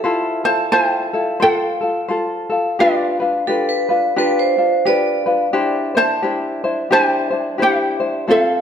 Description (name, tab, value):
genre	Hawaiian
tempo	87 BPM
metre	4/4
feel	swing 59% on 8ths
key	F major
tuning	A4 = 441 Hz
part	tenor ukulele	accompaniment	0.0-8.6 s	C4 to C5	-18 LUFS	left 2 dB	none
part	ukulele	melody	0.5-8.6 s	F4 to A5	-17 LUFS	right 1 dB	none
part	vibraphone with hard mallets	second line	3.5-5.7 s	A4 to D5	-20 LUFS	right 5 dB	none
room	moderate recital hall reverb, RT60 1.6 s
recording	none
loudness	-15 LUFS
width	side -8 dB against mid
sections	0.0-8.6 A section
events	none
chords	0.0 Fmaj7; 2.8 G7; 5.5 Cadd9